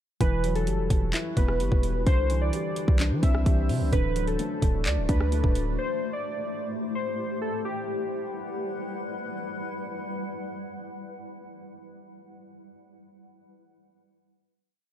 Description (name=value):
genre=hip hop, trap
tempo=129 BPM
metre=4/4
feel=half-time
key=E minor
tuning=A4 = 440 Hz
part: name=warbly lo-fi synth keys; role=melody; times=0.2-9.0 s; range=G4 to E5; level=-32 LUFS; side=left 1 dB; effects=chorus, low-pass filter, ping-pong delay
part: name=dark concert grand piano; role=accompaniment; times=0.2-5.8 s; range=D3 to D5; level=-32 LUFS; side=equal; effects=low-pass filter
part: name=granular cloud pad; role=sustained chords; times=1.0-11.9 s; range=E3 to F#5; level=-34 LUFS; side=left 1 dB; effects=built-in reverb
part: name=hard-hitting 808-style bass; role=bass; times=0.2-5.8 s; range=D1 to E3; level=-26 LUFS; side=equal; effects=none
part: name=trap drum kit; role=drums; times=0.2-5.7 s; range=handclaps, hi-hat, kick drum, rim click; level=-26 LUFS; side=equal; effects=none
room=digital ambience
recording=dark, warm production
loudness=-24 LUFS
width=side -10 dB against mid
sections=0.2-7.6 verse; 7.6-11.4 final chord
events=none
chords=0.2 Emadd9; 2.1 Cadd9; 3.9 D; 5.8 Am7; 7.6 Emadd9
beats=| 0.20 0.67 1.14 1.60 | 2.07 2.53 3.00 3.46 | 3.93 4.39 4.86 5.32 | 5.79 6.25 6.72 7.18 | 7.65 8.11 8.58 9.04 | 9.51 9.97 10.44 10.90